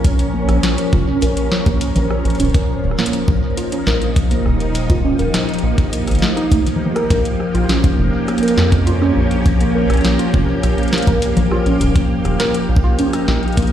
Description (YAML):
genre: IDM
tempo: 102 BPM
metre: 4/4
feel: straight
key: unclear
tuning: A4 = 445 Hz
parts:
  - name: soft string machine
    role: sustained chords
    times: 0.0-13.7 s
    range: F3 to Bb4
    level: -20 LUFS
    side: left 1 dB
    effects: ensemble chorus, sidechain pumping
  - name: rubbery square bass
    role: bass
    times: 0.0-13.7 s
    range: Eb1 to F2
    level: -17 LUFS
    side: equal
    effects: none
  - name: booming analog drum machine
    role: drums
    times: 0.0-13.7 s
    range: congas, hi-hat, rim click, snare drum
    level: -23 LUFS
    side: left 1 dB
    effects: small room ambience, tape echo
  - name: electronic kick drum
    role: drums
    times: 0.0-13.7 s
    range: none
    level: -14 LUFS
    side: equal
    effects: small room ambience
  - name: warbly dusty pluck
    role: arpeggios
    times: 0.3-13.6 s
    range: A3 to Bb4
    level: -21 LUFS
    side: right 3 dB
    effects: analog chorus, cassette tape, dub echo
room: light reverb, digital ambience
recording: played on a big sound system in a bare room, large studio reverb, lossy compression artefacts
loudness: -14 LUFS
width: side -10 dB against mid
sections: 0.0-13.7 A section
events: none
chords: 0.0 Bbm6; 2.4 Ebadd9; 7.1 Bbm6; 11.8 Ebadd9